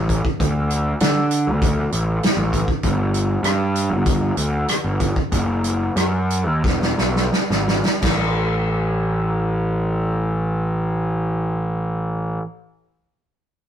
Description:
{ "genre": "indie rock", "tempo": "83-98 BPM", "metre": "4/4", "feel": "straight", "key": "unclear", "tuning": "A4 = 440 Hz", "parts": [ { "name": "fuzz picked electric bass", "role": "bass", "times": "0.0-12.4 s", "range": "E1 to D3", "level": "-20 LUFS", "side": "equal", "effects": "overdrive" }, { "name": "loose indie drum kit", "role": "drums", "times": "0.1-8.2 s", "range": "crash cymbal, hi-hat, kick drum, rim click, snare drum", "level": "-21 LUFS", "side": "equal", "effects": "none" } ], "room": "light reverb", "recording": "rough rehearsal-room recording, warm saturation", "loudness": "-18 LUFS", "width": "side -9 dB against mid", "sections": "0.0-8.0 A section; 8.0-10.9 B section", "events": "slowing down 2.8-8.0; drum fill 6.6-8.0", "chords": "none" }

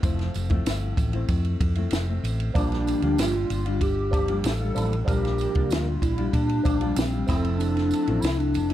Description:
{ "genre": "indie pop, bedroom pop", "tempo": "95 BPM", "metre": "4/4", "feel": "straight", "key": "Bb lydian", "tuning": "A4 = 442 Hz", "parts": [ { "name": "warbly nostalgic lead", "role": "melody", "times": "0.0-8.7 s", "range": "F3 to A4", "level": "-27 LUFS", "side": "equal", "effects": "ensemble chorus" }, { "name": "nylon-string guitar", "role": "accompaniment", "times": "0.0-8.7 s", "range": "Bb2 to F4", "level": "-31 LUFS", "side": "left 5 dB", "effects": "lush chorus, warbly pitch drift" }, { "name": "hollow-body short-scale fingered electric bass", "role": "bass", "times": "0.0-8.7 s", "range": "F1 to Bb2", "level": "-26 LUFS", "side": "equal", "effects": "none" }, { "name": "compact cocktail drum kit", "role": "drums", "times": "0.0-8.7 s", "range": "kick drum, ride cymbal, snare drum", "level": "-28 LUFS", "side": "equal", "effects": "none" }, { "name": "tambourine", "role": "percussion", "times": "0.0-8.7 s", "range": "none", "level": "-43 LUFS", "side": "right 7 dB", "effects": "none" }, { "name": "percussive tonewheel organ", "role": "accompaniment", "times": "2.5-8.3 s", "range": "F3 to Bb4", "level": "-31 LUFS", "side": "right 6 dB", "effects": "fast rotary speaker" } ], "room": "light reverb", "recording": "dark, warm production", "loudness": "-22 LUFS", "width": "side -12 dB against mid", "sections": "0.0-8.7 A section", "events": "none", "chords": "0.0 Fmaj7; 2.6 Bb6; 7.3 Fmaj7" }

